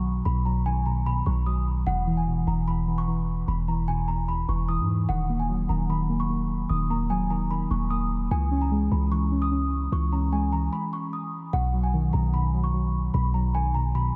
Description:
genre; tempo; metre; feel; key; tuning
hip hop, trap; 149 BPM; 4/4; half-time; unclear; A4 = 439 Hz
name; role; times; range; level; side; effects
small celesta; melody; 0.0-14.1 s; Gb5 to D#6; -34 LUFS; equal; lush chorus, delay
muted felt-like synth keys; accompaniment; 0.0-14.2 s; E2 to Db4; -30 LUFS; equal; chorus
warm 808-style bass; bass; 0.0-14.1 s; Eb1 to G#2; -29 LUFS; equal; none
room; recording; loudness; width
light reverb, small room ambience; none; -26 LUFS; mono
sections
0.0-11.5 A section; 11.5-14.2 B section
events
stop 10.7-11.5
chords
0.0 B; 1.9 E5; 5.1 Ebm; 8.3 Dbm; 11.5 B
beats
| 0.26 0.66 1.06 1.47 | 1.87 2.27 2.67 3.08 | 3.48 3.88 4.29 4.69 | 5.09 5.49 5.89 6.30 | 6.70 7.10 7.51 7.91 | 8.31 8.71 9.12 9.52 | 9.92 10.32 10.73 11.13 | 11.53 11.94 12.34 12.74 | 13.14 13.55 13.95

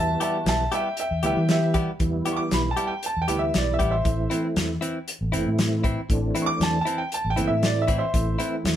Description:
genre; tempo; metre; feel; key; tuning
straight-eighth soul blues; 117 BPM; 4/4; straight; E minor; A4 = 438 Hz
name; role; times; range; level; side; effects
clear upright piano; second line; 0.0-8.5 s; G4 to D6; -26 LUFS; right 1 dB; none
tonewheel organ; accompaniment; 0.0-8.8 s; E3 to F#4; -28 LUFS; right 2 dB; slow rotary speaker, overdrive, chorus vibrato
vintage muted fingered electric bass; bass; 0.0-8.8 s; F#1 to E3; -26 LUFS; equal; none
direct-recorded clean electric guitar; stabs; 0.2-8.6 s; E3 to G4; -29 LUFS; left 1 dB; none
warm soul drum kit; drums; 0.2-8.8 s; hi-hat, kick drum, snare drum; -26 LUFS; left 1 dB; none
room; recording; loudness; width
moderate studio reverb, RT60 0.6 s; band playing live in one room; -21 LUFS; side -11 dB against mid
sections
0.0-8.8 A section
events
upright piano solo 0.0-8.8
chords
0.0 Em; 4.0 Am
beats
0.46 0.98 1.49 | 2.00 2.51 3.02 3.54 | 4.05 4.56 5.07 5.58 | 6.10 6.61 7.12 7.63 | 8.15 8.66

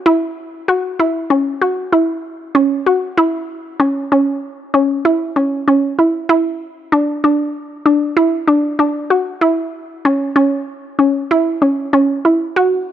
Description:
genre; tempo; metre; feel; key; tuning
progressive instrumental, progressive; 96 BPM; 5/4; straight; unclear; A4 = 440 Hz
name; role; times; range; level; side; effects
resonant blip pluck; solo; 0.1-12.9 s; C#4 to F#4; -14 LUFS; equal; chorus
room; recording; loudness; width
little or no reverb; dry, close 1970s-style studio recording; -13 LUFS; side -10 dB against mid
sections
0.0-3.2 A section; 3.2-12.9 B section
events
none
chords
none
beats
| 0.07 0.69 1.31 1.94 2.56 | 3.18 3.81 4.43 5.06 5.68 | 6.31 6.93 7.56 8.18 8.81 | 9.43 10.06 10.69 11.31 11.94 | 12.56

